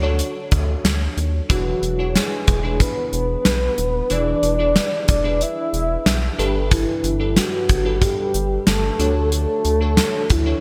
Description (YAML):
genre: 1980s-style pop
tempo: 92 BPM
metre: 4/4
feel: straight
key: unclear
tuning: A4 = 440 Hz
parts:
  - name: glassy digital keys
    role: accompaniment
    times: 0.0-10.6 s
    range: G2 to C#5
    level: -29 LUFS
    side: equal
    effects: chorus
  - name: rubbery square bass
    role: bass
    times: 0.0-10.5 s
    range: D#1 to D#2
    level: -24 LUFS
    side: equal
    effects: none
  - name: gated 80s drum kit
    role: drums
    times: 0.2-10.5 s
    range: hi-hat, kick drum, snare drum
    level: -22 LUFS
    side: equal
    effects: none
  - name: soft octave-layered synth lead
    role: melody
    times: 1.5-10.6 s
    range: E4 to E5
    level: -24 LUFS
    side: equal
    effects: chorus, tremolo
room: moderate lush hall reverb, RT60 3.1 s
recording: bright 1980s-style digital production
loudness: -19 LUFS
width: mono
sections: 0.0-10.6 A section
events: none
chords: 0.0 Dmaj7; 1.5 E7; 6.4 Gadd9; 9.0 Dmaj7